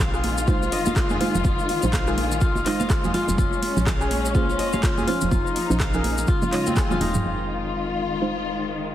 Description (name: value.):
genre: afro house.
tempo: 124 BPM.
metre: 4/4.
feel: swing 59% on 16ths.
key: F minor.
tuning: A4 = 440 Hz.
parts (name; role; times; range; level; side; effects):
warm studio string section; sustained chords; 0.0-8.9 s; Db3 to F4; -28 LUFS; left 4 dB; sidechain pumping.
kora; arpeggios; 0.0-8.6 s; C4 to F5; -27 LUFS; left 1 dB; vintage 12-bit sampler grit, sidechain pumping, ping-pong delay.
deep mellow chord stab; stabs; 0.0-8.9 s; F3 to Db5; -30 LUFS; right 2 dB; chorus, sidechain pumping, ping-pong delay.
woody FM bass; bass; 0.0-8.9 s; Eb1 to F2; -29 LUFS; equal; sidechain pumping.
afro-pop drum kit; drums; 0.0-8.6 s; handclaps, hi-hat, rim click, toms; -31 LUFS; equal; low-pass filter on snare, low-pass filter on hats, low-pass filter on toms.
congas; percussion; 0.0-7.2 s; none; -29 LUFS; right 3 dB; none.
maracas; percussion; 0.1-7.2 s; none; -35 LUFS; left 2 dB; none.
electronic kick drum; drums; 0.5-6.9 s; none; -23 LUFS; equal; none.
room: light reverb, studio reverb.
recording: heavily compressed radio sound.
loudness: -20 LUFS.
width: side -12 dB against mid.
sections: 0.0-7.3 A section; 7.3-8.9 B section.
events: drum fill 6.8-7.3.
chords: 0.0 Fm7; 3.4 Bbm9/F; 6.3 Eb9sus4; 7.3 Fm7.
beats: 0.48 0.96 | 1.45 1.93 2.41 2.90 | 3.38 3.87 4.35 4.83 | 5.32 5.80 6.28 6.77 | 7.25 7.74 8.22 8.70.